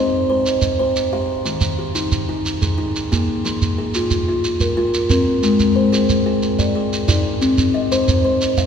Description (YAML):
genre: southern african traditional, mbira-style interlocking cycle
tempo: 121 BPM (dotted quarters)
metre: 12/8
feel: straight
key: F dorian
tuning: A4 = 443 Hz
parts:
  - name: buzzing kalimba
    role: arpeggios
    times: 0.0-8.7 s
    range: Eb3 to F5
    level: -17 LUFS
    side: left 1 dB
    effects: none
  - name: shekere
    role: percussion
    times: 0.5-8.7 s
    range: none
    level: -20 LUFS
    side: right 2 dB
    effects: none
room: wet cathedral reverb, RT60 5.0 s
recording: recorded in a church or concert hall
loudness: -16 LUFS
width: side -7 dB against mid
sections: 0.0-8.7 A section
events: none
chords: 0.0 Cm; 1.5 Eb; 3.4 Fm; 5.4 Ab; 7.4 Cm